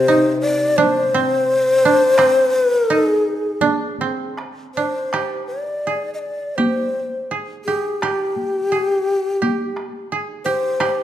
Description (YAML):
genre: japanese traditional, Japanese chamber music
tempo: 86 BPM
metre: 4/4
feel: rubato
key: C hirajoshi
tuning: A4 = 440 Hz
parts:
  - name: breathy long shakuhachi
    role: melody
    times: 0.0-11.0 s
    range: G4 to Eb5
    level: -18 LUFS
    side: left 2 dB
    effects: none
  - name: koto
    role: second line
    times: 0.0-11.0 s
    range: C4 to Ab4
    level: -21 LUFS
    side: right 4 dB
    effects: none
  - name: koto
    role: accompaniment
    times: 0.0-1.8 s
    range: C3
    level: -26 LUFS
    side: left 4 dB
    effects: none
  - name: taiko ensemble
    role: percussion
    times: 0.8-11.0 s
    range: none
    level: -25 LUFS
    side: equal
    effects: none
room: moderate recital hall reverb, RT60 1.6 s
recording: none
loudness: -16 LUFS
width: side -11 dB against mid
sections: 0.0-5.1 A section; 5.1-11.0 B section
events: none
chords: none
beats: 0.09 0.79 1.49 | 2.18 2.88 3.60 4.37 | 5.13 5.87 6.59 7.30 | 8.01 8.71 9.40 10.10 | 10.79